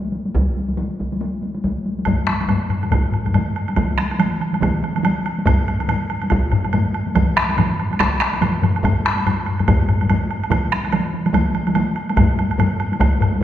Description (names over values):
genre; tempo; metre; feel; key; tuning
japanese traditional, taiko drum ensemble; 142 BPM; 4/4; swing 60% on 16ths; none; none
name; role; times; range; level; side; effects
taiko ensemble; percussion; 0.1-13.4 s; none; -22 LUFS; left 1 dB; none
taiko ensemble; percussion; 0.3-13.1 s; none; -22 LUFS; right 1 dB; none
taiko ensemble; percussion; 2.1-13.4 s; none; -20 LUFS; left 2 dB; none
woodblock; percussion; 2.1-13.3 s; none; -26 LUFS; right 4 dB; none
taiko ensemble; percussion; 3.8-11.9 s; none; -22 LUFS; right 4 dB; none
room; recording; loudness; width
wet recital hall reverb, RT60 1.7 s; recorded in a church or concert hall; -17 LUFS; side -11 dB against mid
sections
0.0-2.1 A section; 2.1-13.4 B section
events
speeding up 0.0-13.4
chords
none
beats
| 0.34 0.78 1.20 1.63 | 2.06 2.49 2.92 3.34 | 3.77 4.19 4.62 5.04 | 5.47 5.89 6.31 6.73 | 7.16 7.58 8.00 8.42 | 8.84 9.26 9.68 10.09 | 10.51 10.93 11.35 11.76 | 12.18 12.59 13.01 13.42